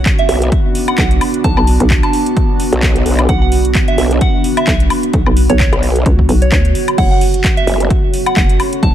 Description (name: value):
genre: bass house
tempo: 130 BPM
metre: 4/4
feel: swing 56% on 16ths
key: unclear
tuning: A4 = 440 Hz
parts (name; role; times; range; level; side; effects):
- deep dark ambient pad; sustained chords; 0.0-8.9 s; B3 to A4; -23 LUFS; right 3 dB; chorus, built-in reverb, sidechain pumping
- hollow knocking FM bass; bass; 0.0-8.9 s; F#1 to D2; -13 LUFS; equal; sidechain pumping
- airy breathy pad; texture; 0.0-8.9 s; B3 to A5; -20 LUFS; right 1 dB; chorus, sidechain pumping
- electronic kick drum; drums; 0.1-8.9 s; none; -14 LUFS; equal; overdrive
- house drum kit; drums; 0.1-8.9 s; crash cymbal, handclaps, hi-hat, woodblock; -20 LUFS; left 2 dB; overdrive
- soft synth bell; melody; 0.2-8.9 s; C#5 to A5; -21 LUFS; right 1 dB; chorus, phaser, tape echo
- growl bass; bass; 0.3-7.9 s; F#1 to B1; -13 LUFS; equal; chorus, sidechain pumping
room: little or no reverb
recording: none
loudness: -10 LUFS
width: side -11 dB against mid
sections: 0.0-8.9 A section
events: none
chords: 0.0 Bm; 7.0 F#m